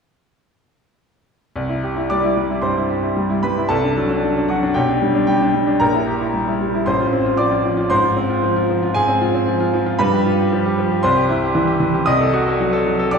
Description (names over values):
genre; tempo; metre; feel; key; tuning
classical, virtuoso piano study; 114 BPM; 4/4; rubato; C major; A4 = 440 Hz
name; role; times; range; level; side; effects
bright grand piano; solo; 1.6-13.2 s; A1 to Eb6; -15 LUFS; equal; none
room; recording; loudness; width
wet recital hall reverb, RT60 1.8 s; recorded in a church or concert hall; -16 LUFS; side -5 dB against mid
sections
1.6-13.2 A section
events
none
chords
1.6 C; 3.7 D7/C; 4.8 G/B; 5.8 Edim/Bb; 6.9 F/A; 7.9 Fm/Ab; 10.0 G7; 11.0 C; 12.1 Cdim7